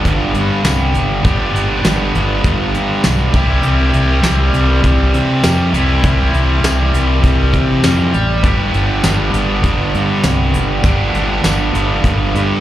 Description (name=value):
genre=classic rock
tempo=100 BPM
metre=4/4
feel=straight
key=G major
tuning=A4 = 443 Hz
part: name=tight distorted guitar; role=riff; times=0.0-12.6 s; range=G2 to G4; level=-16 LUFS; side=equal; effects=distortion
part: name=fuzz fingered electric bass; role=bass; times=0.0-12.6 s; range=G1 to C3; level=-15 LUFS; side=equal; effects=overdrive
part: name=soft brush drum kit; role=drums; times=0.1-12.5 s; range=hi-hat, kick drum, snare drum, tambourine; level=-17 LUFS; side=equal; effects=none
room=little or no reverb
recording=live gig heard through the venue's PA, club reverb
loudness=-12 LUFS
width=side -13 dB against mid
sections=0.0-12.6 A section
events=none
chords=0.0 G; 3.3 C; 8.4 G